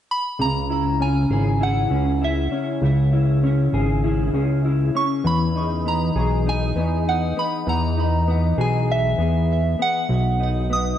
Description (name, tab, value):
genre	dream pop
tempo	99 BPM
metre	4/4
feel	straight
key	C# dorian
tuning	A4 = 441 Hz
part	soft synth bell	melody	0.1-11.0 s	E5 to D#6	-25 LUFS	right 2 dB	chorus, phaser, tape echo
part	mellow electric guitar	arpeggios	0.4-11.0 s	B2 to G#4	-22 LUFS	left 1 dB	ensemble chorus, tape echo
part	fat analog bass	bass	0.4-11.0 s	G#1 to E2	-21 LUFS	equal	none
room	moderate echo chamber reverb, RT60 1.9 s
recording	echo-heavy mix, nothing above 10.9 kHz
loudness	-18 LUFS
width	side -10 dB against mid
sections	0.4-11.0 A section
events	none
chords	0.4 C#m; 5.2 Emaj7; 10.1 B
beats	| 0.40 1.00 1.61 2.21 | 2.82 3.43 4.03 4.64 | 5.24 5.85 6.46 7.06 | 7.67 8.28 8.88 9.49 | 10.09 10.70